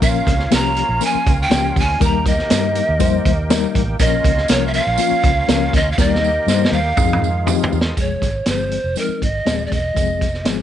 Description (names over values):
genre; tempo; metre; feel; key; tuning
uptempo 1960s-style soul; 121 BPM; 4/4; straight; F minor; A4 = 440 Hz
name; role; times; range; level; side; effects
breathy mellow polished pan flute; melody; 0.0-10.5 s; Bb4 to Bb5; -20 LUFS; right 2 dB; none
reed electric piano; accompaniment; 0.0-10.6 s; C3 to C5; -21 LUFS; left 13 dB; fast tremolo
overdriven tonewheel organ; sustained chords; 0.0-8.0 s; Eb3 to G4; -28 LUFS; right 1 dB; chorus vibrato, wide subtle chorus
vintage muted fingered electric bass; bass; 0.0-10.6 s; Eb1 to G2; -22 LUFS; right 1 dB; none
vintage drum kit; drums; 0.0-10.6 s; hi-hat, kick drum, snare drum, toms; -19 LUFS; right 1 dB; none
tambourine; percussion; 0.0-10.6 s; none; -32 LUFS; right 18 dB; none
room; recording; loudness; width
small room ambience; 1960s-style stereo with parts hard left and right, nothing above 10.5 kHz; -15 LUFS; side -10 dB against mid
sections
0.0-8.0 A section; 8.0-10.6 B section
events
drum fill 6.0-8.0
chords
0.0 Bbm; 2.0 Eb; 4.0 Bbm; 6.0 Eb; 7.0 Fm7; 8.0 Fm